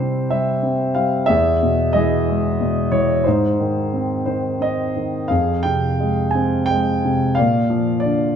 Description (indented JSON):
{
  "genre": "classical, lyrical solo piano",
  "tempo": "60 BPM (dotted quarters)",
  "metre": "6/8",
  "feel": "rubato",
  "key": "F dorian from 5.3 s",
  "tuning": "A4 = 440 Hz",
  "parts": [
    { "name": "warm concert grand piano", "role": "solo", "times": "0.0-8.4 s", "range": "E2 to Ab5", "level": "-16 LUFS", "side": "equal", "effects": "none" }
  ],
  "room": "wet recital hall reverb, RT60 1.7 s",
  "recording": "none",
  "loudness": "-16 LUFS",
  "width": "side -8 dB against mid",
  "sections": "0.0-5.3 A section; 5.3-8.4 B section",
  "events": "none",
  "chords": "0.0 C; 1.3 E; 3.3 Ab; 5.3 Fm; 7.4 Bb"
}